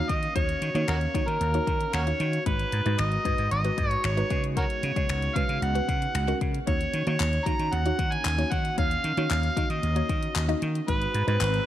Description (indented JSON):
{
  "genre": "dance-pop",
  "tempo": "114 BPM",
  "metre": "4/4",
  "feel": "straight",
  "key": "unclear",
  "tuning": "A4 = 439 Hz",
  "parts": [
    { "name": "overdriven harmonica", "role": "melody", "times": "0.0-11.7 s", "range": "F#4 to A#5", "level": "-29 LUFS", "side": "right 1 dB", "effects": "tape echo" },
    { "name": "mallet-like synth pluck", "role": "accompaniment", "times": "0.0-11.5 s", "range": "G#3 to D#5", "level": "-33 LUFS", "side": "equal", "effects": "chorus, phaser, sidechain pumping" },
    { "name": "chorused pulse-width pad", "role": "sustained chords", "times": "0.0-11.7 s", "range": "C#3 to A#5", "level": "-38 LUFS", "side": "left 1 dB", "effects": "sidechain pumping" },
    { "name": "vintage slap bass", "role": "bass", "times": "0.1-11.6 s", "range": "G#1 to D#3", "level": "-28 LUFS", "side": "equal", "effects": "sidechain pumping" },
    { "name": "pop drum kit", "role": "drums", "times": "0.1-11.7 s", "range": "finger snaps, handclaps, hi-hat, kick drum", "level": "-30 LUFS", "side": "left 2 dB", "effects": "none" },
    { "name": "swell", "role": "sound effects", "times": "11.2-11.7 s", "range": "none", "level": "-36 LUFS", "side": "left 3 dB", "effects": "none" }
  ],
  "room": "light reverb",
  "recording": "1960s-style stereo",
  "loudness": "-24 LUFS",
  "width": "side -12 dB against mid",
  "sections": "0.0-11.7 A section",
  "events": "swell 11.2-11.7",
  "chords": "0.0 D#m7; 2.5 G#m7; 4.3 C#7sus4; 6.7 D#m7; 10.9 G#m7"
}